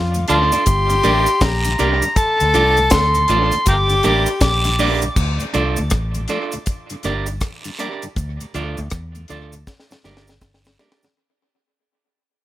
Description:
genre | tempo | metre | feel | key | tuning
roots reggae | 80 BPM | 4/4 | swing 63% on 16ths | D minor | A4 = 439 Hz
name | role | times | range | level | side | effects
bright tenor saxophone | second line | 0.0-4.8 s | F4 to A4 | -23 LUFS | left 4 dB | dub echo, plate reverb
vintage muted fingered electric bass | bass | 0.0-10.7 s | G1 to F2 | -21 LUFS | equal | none
deep reggae drum kit | drums | 0.1-11.2 s | crash cymbal, hi-hat, kick drum, rim click, snare drum | -21 LUFS | left 1 dB | dub echo
cabasa and guiro | percussion | 0.1-11.2 s | none | -31 LUFS | right 3 dB | none
mellow tonewheel organ | accompaniment | 0.2-11.1 s | D2 to D4 | -27 LUFS | left 2 dB | slow rotary speaker
overdriven harmonica | melody | 0.3-5.0 s | F5 to D6 | -19 LUFS | equal | dub echo
clean electric guitar | accompaniment | 0.3-11.0 s | D4 to D5 | -23 LUFS | right 6 dB | dub echo
room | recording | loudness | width
light reverb | none | -15 LUFS | side -14 dB against mid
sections
0.0-5.2 A section; 5.2-11.2 B section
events
fade-out 5.2-11.2; drum fill 9.7-11.2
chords
0.0 Dm; 0.7 Gm; 2.2 Dm; 3.7 Gm; 5.2 Dm; 6.7 Gm; 8.2 Dm; 9.7 Gm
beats
0.66 1.41 | 2.16 2.91 3.66 4.41 | 5.16 5.91 6.66 7.42 | 8.16 8.92 9.67 10.42

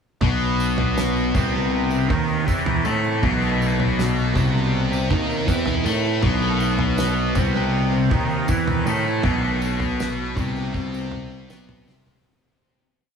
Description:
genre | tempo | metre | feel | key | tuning
psychedelic rock | 80 BPM | 4/4 | straight | unclear | A4 = 439 Hz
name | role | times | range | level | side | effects
thick fuzz guitar | riff | 0.2-12.2 s | B2 to A4 | -21 LUFS | left 1 dB | distortion, phaser, tape echo
fuzz picked electric bass | bass | 0.2-12.2 s | B1 to A2 | -24 LUFS | right 1 dB | overdrive
damped 70s drum kit | drums | 0.2-12.2 s | kick drum, snare drum, toms | -26 LUFS | right 1 dB | tape echo
tambourine | percussion | 0.4-12.2 s | none | -44 LUFS | right 7 dB | none
room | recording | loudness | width
light reverb, small room ambience | echo-heavy mix | -19 LUFS | side -6 dB against mid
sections
0.2-12.3 riff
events
fade-out 9.2-12.3; drum fill 11.9-12.3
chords
0.2 B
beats
| 0.21 0.97 1.73 2.48 | 3.23 3.98 4.74 5.49 | 6.24 6.99 7.74 8.49 | 9.24 10.00 10.75 11.50

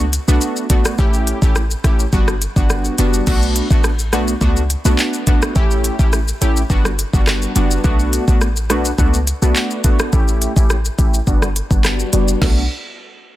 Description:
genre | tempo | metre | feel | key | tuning
dancehall | 105 BPM | 4/4 | straight | B minor | A4 = 440 Hz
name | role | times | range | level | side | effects
synth brass stab | accompaniment | 0.0-12.6 s | G3 to G4 | -20 LUFS | equal | chorus, sidechain pumping, low-pass filter
short 808-style bass | bass | 0.0-12.7 s | F#1 to C#2 | -18 LUFS | equal | none
island pop drum kit | drums | 0.0-12.6 s | crash cymbal, handclaps, hi-hat, kick drum, rim click, shaker, snare drum | -17 LUFS | equal | soft clipping on snare
room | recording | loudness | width
little or no reverb | dense, heavily limited modern master | -13 LUFS | side -15 dB against mid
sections
0.0-3.3 A section; 3.3-12.4 B section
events
filter sweep on synth stab 3.3-12.4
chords
0.0 Bm7; 1.0 A7; 2.1 Gmaj7; 3.3 Bm7; 5.6 A7; 6.7 Gmaj7; 7.8 Bm7; 10.1 A7; 11.3 Gmaj7; 12.4 Bm7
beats
0.41 | 0.99 1.56 2.13 2.70 | 3.27 3.84 4.42 4.99 | 5.56 6.13 6.70 7.27 | 7.84 8.41 8.99 9.56 | 10.13 10.70 11.27 11.84 | 12.41

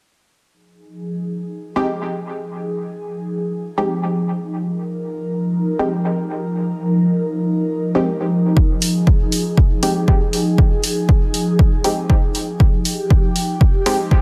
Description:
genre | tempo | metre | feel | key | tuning
dub techno | 119 BPM | 4/4 | swing 55% on 16ths | F minor | A4 = 441 Hz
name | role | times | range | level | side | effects
airy breathy pad | sustained chords | 1.0-14.2 s | F3 to Bb4 | -23 LUFS | equal | chorus, phaser, sidechain pumping
filtered dub chord stab | stabs | 1.8-14.0 s | Ab3 to G4 | -24 LUFS | equal | chorus, phaser, dub echo
electronic kick drum | drums | 8.6-14.2 s | none | -16 LUFS | equal | overdrive
electronic hi-hat | drums | 8.8-14.0 s | none | -25 LUFS | equal | overdrive
room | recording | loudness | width
moderate echo chamber reverb, RT60 1.7 s | none | -18 LUFS | mono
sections
0.5-14.2 A section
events
filter sweep on analog synth pad 0.5-14.2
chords
0.5 Fm7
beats
| 0.50 1.00 1.51 2.01 | 2.52 3.02 3.52 4.03 | 4.53 5.04 5.54 6.04 | 6.55 7.05 7.56 8.06 | 8.57 9.07 9.57 10.08 | 10.58 11.09 11.59 12.10 | 12.60 13.10 13.61 14.11

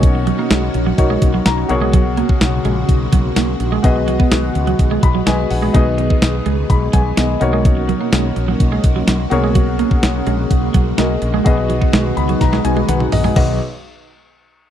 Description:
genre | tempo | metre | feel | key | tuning
1980s-style pop | 126 BPM | 4/4 | straight | unclear | A4 = 442 Hz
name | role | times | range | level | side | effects
warm concert grand piano | accompaniment | 0.0-13.6 s | B1 to B5 | -20 LUFS | left 4 dB | none
ensemble organ-string | sustained chords | 0.0-13.6 s | C#3 to G#4 | -22 LUFS | equal | ensemble chorus
mellow fretless electric bass | bass | 0.0-13.6 s | A#1 to C#2 | -19 LUFS | equal | ensemble chorus
clean 12-bit digital drum machine | drums | 0.0-13.5 s | crash cymbal, hi-hat, kick drum, snare drum, tambourine, toms | -15 LUFS | equal | none
twelve-string electric guitar | riff | 0.1-13.5 s | F#3 to B3 | -22 LUFS | right 7 dB | analog chorus
room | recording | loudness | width
digital ambience | dry, close 1970s-style studio recording | -13 LUFS | side -10 dB against mid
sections
0.0-13.4 A section; 13.4-14.7 B section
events
grand piano fill 1.2-1.9, 4.8-5.7, 11.9-13.4; drum fill 12.4-13.4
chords
0.0 D#m7/B; 1.7 F#add9; 3.8 B6; 5.7 G#m/B; 7.4 D#m7; 13.4 B6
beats
| 0.03 0.51 0.98 1.46 | 1.93 2.41 2.89 3.36 | 3.84 4.32 4.79 5.27 | 5.74 6.22 6.70 7.17 | 7.65 8.12 8.60 9.08 | 9.55 10.03 10.51 10.98 | 11.46 11.93 12.41 12.89 | 13.36

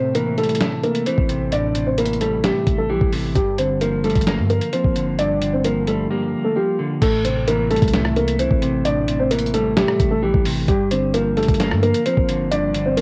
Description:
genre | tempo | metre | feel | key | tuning
hip hop, trap | 131 BPM | 4/4 | half-time | A phrygian | A4 = 440 Hz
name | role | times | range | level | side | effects
dark concert grand piano | melody | 0.0-13.0 s | G3 to D5 | -23 LUFS | equal | low-pass filter, cassette tape, tape echo
clean electric guitar | accompaniment | 0.0-13.0 s | G2 to Bb3 | -25 LUFS | equal | lush chorus, low-pass filter, cassette tape
lo-fi sampler-style drum kit | drums | 0.1-13.0 s | crash cymbal, hi-hat, kick drum, rim click, snare drum | -24 LUFS | equal | overdrive
warm 808-style bass | bass | 1.2-13.0 s | G1 to G2 | -28 LUFS | equal | none
room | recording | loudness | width
digital ambience | home recording on cassette | -19 LUFS | mono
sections
0.0-7.0 A section; 7.0-13.0 B section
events
break 0.0-0.6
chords
0.0 Am7; 3.4 Gm7; 7.0 Am7; 10.7 Gm7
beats
0.15 0.61 1.06 | 1.52 1.98 2.44 2.90 | 3.35 3.81 4.27 4.73 | 5.19 5.64 6.10 6.56 | 7.02 7.48 7.93 8.39 | 8.85 9.31 9.77 10.22 | 10.68 11.14 11.60 12.06 | 12.52 12.97

